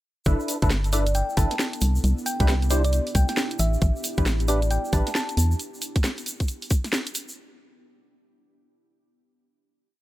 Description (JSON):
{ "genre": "UK garage, two-step garage", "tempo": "135 BPM", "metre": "4/4", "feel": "swing 63% on 16ths", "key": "unclear", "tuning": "A4 = 440 Hz", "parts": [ { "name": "ethereal airy pad", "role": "sustained chords", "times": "0.9-5.6 s", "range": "B3 to A4", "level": "-37 LUFS", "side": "right 1 dB", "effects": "ensemble chorus, built-in reverb, sidechain pumping" }, { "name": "percussive organ stab", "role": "stabs", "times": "0.3-5.1 s", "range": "D4 to C5", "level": "-30 LUFS", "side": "equal", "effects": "ensemble chorus, digital delay" }, { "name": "organ-like FM bass", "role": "bass", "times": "0.3-5.5 s", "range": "G1 to E2", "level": "-22 LUFS", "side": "equal", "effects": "tube saturation" }, { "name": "electronic kick drum", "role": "drums", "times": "0.3-6.8 s", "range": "none", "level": "-22 LUFS", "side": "equal", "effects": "overdrive" }, { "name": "garage drum kit", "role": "drums", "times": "0.3-7.3 s", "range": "hi-hat, snare drum", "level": "-28 LUFS", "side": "equal", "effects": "overdrive" }, { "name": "egg shaker", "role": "percussion", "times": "0.3-7.4 s", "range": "none", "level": "-35 LUFS", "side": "right 1 dB", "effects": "none" }, { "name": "thumb-piano-like synth pluck", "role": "melody", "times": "0.9-5.4 s", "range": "D5 to A5", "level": "-30 LUFS", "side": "equal", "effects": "chorus, digital delay" } ], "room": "little or no reverb", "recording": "none", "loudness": "-21 LUFS", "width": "side -16 dB against mid", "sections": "0.3-7.4 drop", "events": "drop 0.3-7.4", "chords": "0.3 G69; 1.8 Cmaj9; 3.6 A9sus4; 5.6 N.C." }